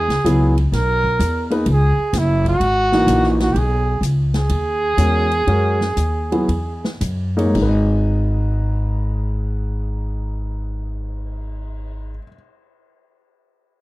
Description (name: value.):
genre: modal jazz.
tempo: 108-128 BPM.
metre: 4/4.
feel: swing 68% on 8ths.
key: G# minor.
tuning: A4 = 440 Hz.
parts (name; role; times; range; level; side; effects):
warm trumpet; melody; 0.0-7.0 s; E4 to A#4; -20 LUFS; right 2 dB; slapback echo.
upright bass; bass; 0.0-12.2 s; F#1 to F#2; -19 LUFS; equal; none.
swinging big-band drum kit; drums; 0.1-11.9 s; crash cymbal, cymbal swell, hi-hat, kick drum, ride cymbal, snare drum; -31 LUFS; equal; none.
clear upright piano; accompaniment; 0.2-12.3 s; G#2 to D#5; -21 LUFS; equal; none.
room: studio reverb.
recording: dry, close 1970s-style studio recording.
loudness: -16 LUFS.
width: side -18 dB against mid.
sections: 0.0-7.6 A section; 7.6-12.0 B section.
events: slowing down 3.5-7.6.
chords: 0.0 F#13sus4; 7.6 G#m.